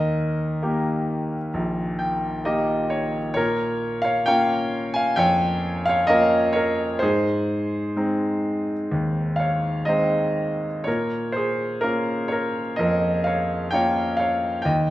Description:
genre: classical, lyrical solo piano.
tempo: 64 BPM.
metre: 4/4.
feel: rubato.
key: Bb dorian.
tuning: A4 = 440 Hz.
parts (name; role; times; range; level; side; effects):
clear concert grand piano; solo; 0.0-14.9 s; Bb1 to Ab5; -20 LUFS; equal; none.
room: moderate recital hall reverb, RT60 1.5 s.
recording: minimal, uncompressed stereo recording.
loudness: -20 LUFS.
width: side -15 dB against mid.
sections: 0.0-14.9 A section.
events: grand piano fill 1.5-3.4.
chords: 0.0 Eb; 3.4 Bbm; 7.0 Ab; 10.9 Bbm.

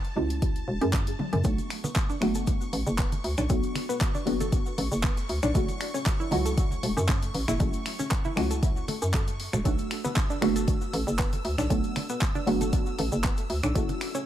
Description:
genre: deep house.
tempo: 117 BPM.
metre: 4/4.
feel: swing 53% on 16ths.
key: B minor.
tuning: A4 = 440 Hz.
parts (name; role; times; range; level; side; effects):
filtered dub chord stab; stabs; 0.0-14.3 s; F#3 to G#4; -31 LUFS; right 1 dB; phaser, lush chorus, cassette tape, tape echo.
deep house drum kit; drums; 0.0-14.1 s; finger snaps, handclaps, hi-hat, toms; -34 LUFS; equal; none.
string machine, violins; texture; 0.0-14.3 s; A5 to E6; -42 LUFS; equal; ensemble chorus.
hollow knocking FM bass; bass; 0.2-13.9 s; E1 to F#2; -29 LUFS; equal; sidechain pumping.
congas; percussion; 0.2-14.0 s; none; -36 LUFS; right 3 dB; dub echo.
electronic kick drum; drums; 0.4-13.9 s; none; -27 LUFS; equal; none.
analog pluck; arpeggios; 1.4-14.3 s; A3 to A4; -34 LUFS; equal; chorus, sidechain pumping, dub echo.
cabasa; percussion; 1.4-14.2 s; none; -42 LUFS; left 4 dB; none.
room: little or no reverb.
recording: echo-heavy mix.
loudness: -24 LUFS.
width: side -12 dB against mid.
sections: 0.0-14.3 A section.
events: filter sweep on synth stab 0.0-14.3; drum fill 1.2.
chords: 0.0 F#m7; 1.4 Bm7; 5.5 F#m7; 9.7 Bm7; 13.8 F#m7.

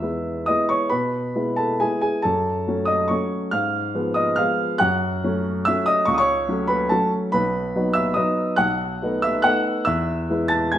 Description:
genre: classical, piano waltz.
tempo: 129-150 BPM.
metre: 3/4.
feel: rubato.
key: E major.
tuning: A4 = 440 Hz.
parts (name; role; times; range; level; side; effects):
warm upright piano; solo; 0.0-10.8 s; B1 to A6; -19 LUFS; equal; none.
room: moderate recital hall reverb, RT60 1.4 s.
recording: minimal, uncompressed stereo recording.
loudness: -19 LUFS.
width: side -11 dB against mid.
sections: 0.0-10.8 A section.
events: none.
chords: 0.0 E; 2.2 F#m; 3.5 Fdim/Ab; 4.8 F#m; 7.3 B; 8.6 B7; 9.9 E.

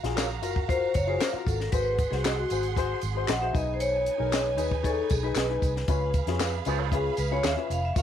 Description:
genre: uptempo 1960s-style soul.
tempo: 116 BPM.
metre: 4/4.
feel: straight.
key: unclear.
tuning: A4 = 441 Hz.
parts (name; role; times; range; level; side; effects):
warm symphonic violin section; second line; 0.0-8.0 s; D#4 to C#6; -37 LUFS; right 15 dB; none.
warm upright piano; accompaniment; 0.0-8.0 s; C#4 to C#5; -33 LUFS; left 11 dB; none.
vintage muted fingered electric bass; bass; 0.0-8.0 s; E#1 to E#2; -31 LUFS; right 1 dB; none.
compact cocktail drum kit; drums; 0.0-8.0 s; hi-hat, kick drum, snare drum; -30 LUFS; left 2 dB; none.
electric guitar at the edge of break-up; stabs; 0.2-7.5 s; F#4 to E#5; -34 LUFS; right 13 dB; analog chorus.
handclaps and tambourine; percussion; 0.2-8.0 s; none; -38 LUFS; left 3 dB; none.
vibraphone with medium hard mallets; melody; 0.4-8.0 s; F#4 to F#5; -29 LUFS; left 1 dB; none.
warm horn section; second line; 6.7-6.9 s; E#3 to G#4; -35 LUFS; right 14 dB; none.
room: studio ambience.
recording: 1960s-style stereo with parts hard left and right.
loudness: -24 LUFS.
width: side -9 dB against mid.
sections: 0.0-8.0 A section.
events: vibraphone solo 0.0-8.0; band accent 5.9-8.0.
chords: 0.0 F#maj7; 1.7 G#7; 3.6 B6; 5.9 C#7.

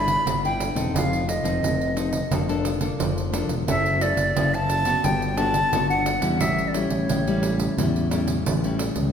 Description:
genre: samba and choro.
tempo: 88 BPM.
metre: 4/4.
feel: straight.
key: unclear.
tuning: A4 = 441 Hz.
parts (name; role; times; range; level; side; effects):
breathy silver concert flute; melody; 0.0-7.8 s; C#5 to B5; -24 LUFS; equal; none.
nylon-string guitar; accompaniment; 0.0-9.1 s; A2 to B4; -27 LUFS; left 3 dB; none.
growling fingered electric bass; bass; 0.0-9.1 s; E1 to E2; -27 LUFS; equal; overdrive.
pandeiro; percussion; 0.1-9.1 s; none; -27 LUFS; right 4 dB; none.
room: wet recital hall reverb, RT60 1.6 s.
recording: recorded in a church or concert hall.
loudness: -20 LUFS.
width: side -8 dB against mid.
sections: 0.0-9.1 A section.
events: none.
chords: 0.0 G6; 0.9 F7; 2.3 Bbmaj7/F; 3.7 F#m7; 5.0 Gmaj7; 6.4 A7.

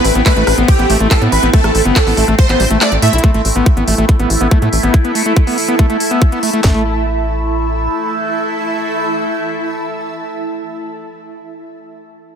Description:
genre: psychedelic trance.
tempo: 141 BPM.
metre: 4/4.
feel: straight.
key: A minor.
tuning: A4 = 439 Hz.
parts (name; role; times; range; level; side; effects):
supersaw stab; melody; 0.0-3.2 s; G4 to E5; -17 LUFS; right 1 dB; phaser, sidechain pumping, digital delay.
overtone-sweeping drone; sustained chords; 0.0-10.8 s; A3 to E4; -21 LUFS; right 2 dB; chorus, built-in reverb, phaser, sidechain pumping.
screaming distorted acid line; riff; 0.0-6.8 s; G3 to E4; -17 LUFS; left 1 dB; distortion, chorus, auto-pan, sidechain pumping, digital delay.
tight sequencer bass; bass; 0.0-7.9 s; G1 to A2; -16 LUFS; equal; none.
techno drum kit; drums; 0.0-6.6 s; handclaps, hi-hat, rim click; -19 LUFS; left 1 dB; none.
granular cloud pad; texture; 0.0-10.8 s; E4 to A5; -22 LUFS; equal; built-in reverb, sidechain pumping.
garage drum kit; drums; 0.3-6.7 s; handclaps, kick drum, snare drum; -10 LUFS; equal; overdrive.
room: light reverb, digital ambience.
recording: none.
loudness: -11 LUFS.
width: side -8 dB against mid.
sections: 0.0-3.2 A section; 3.2-6.6 B section; 6.6-10.0 C section.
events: drop 0.0-3.2; kick drops out 2.8-3.2; drum fill 3.0.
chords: 0.0 A5.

